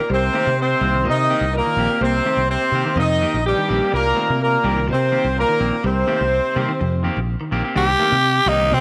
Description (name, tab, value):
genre	afrobeat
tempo	125 BPM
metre	4/4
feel	straight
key	C dorian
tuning	A4 = 440 Hz
part	clear horn section	melody	0.0-7.2 s	G3 to Eb5	-22 LUFS	equal	slapback echo
part	bright bass trombone	second line	0.0-7.2 s	G2 to Eb3	-33 LUFS	equal	none
part	growling alto saxophone	second line	0.0-7.2 s	G4 to Eb5	-30 LUFS	equal	none
part	electric guitar at the edge of break-up	arpeggios	0.1-8.8 s	C3 to Bb3	-30 LUFS	equal	none
part	fingered electric bass	bass	0.1-8.8 s	Bb1 to C3	-25 LUFS	equal	none
part	clean electric guitar	stabs	0.3-8.7 s	Eb3 to G4	-29 LUFS	equal	warbly pitch drift
part	raspy tenor saxophone	melody	7.8-8.8 s	C4 to G4	-18 LUFS	equal	none
room	moderate plate reverb, RT60 2.5 s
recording	none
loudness	-19 LUFS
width	mono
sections	0.0-7.8 A section; 7.8-8.8 B section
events	tenor saxophone solo 7.8-8.8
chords	0.0 Cm7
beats	| 0.09 0.57 1.05 1.53 | 2.01 2.49 2.97 3.45 | 3.92 4.40 4.88 5.36 | 5.84 6.32 6.80 7.27 | 7.75 8.23 8.71